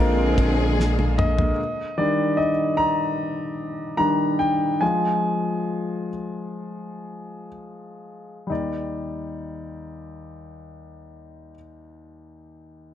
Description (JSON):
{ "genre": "pop ballad", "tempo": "59-76 BPM", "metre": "4/4", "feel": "straight", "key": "Eb major", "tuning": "A4 = 445 Hz", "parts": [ { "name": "clear studio cello section", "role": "second line", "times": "0.0-1.6 s", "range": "Bb3 to C4", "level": "-29 LUFS", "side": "right 2 dB", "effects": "none" }, { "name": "warm concert grand piano", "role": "accompaniment", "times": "0.0-12.9 s", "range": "Eb2 to Bb5", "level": "-24 LUFS", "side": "left 1 dB", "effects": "none" }, { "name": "rich studio string section", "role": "sustained chords", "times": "0.0-1.6 s", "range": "D3 to Ab4", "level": "-28 LUFS", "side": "equal", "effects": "none" }, { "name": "saturated sub bass", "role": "bass", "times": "0.0-1.5 s", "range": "Bb1", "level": "-23 LUFS", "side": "right 1 dB", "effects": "none" }, { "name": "damped 70s drum kit", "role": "drums", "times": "0.4-1.6 s", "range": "kick drum, ride cymbal, snare drum, toms", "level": "-24 LUFS", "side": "equal", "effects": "none" } ], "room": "moderate concert hall reverb, RT60 2.4 s", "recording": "dark, warm production", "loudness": "-21 LUFS", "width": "side -11 dB against mid", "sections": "0.0-1.6 A section; 1.6-8.5 B section; 8.5-12.5 C section", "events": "drum fill 0.8-1.6; slowing down 1.6-8.5; grand piano solo 1.6-8.5", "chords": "0.0 Bb7; 1.6 Ebmaj7; 4.8 Fm; 8.5 Ebmaj7", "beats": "0.79 | 1.58 2.38 3.17 3.98 | 4.82 5.68 6.57 7.51 | 8.50 9.52 10.53 11.54" }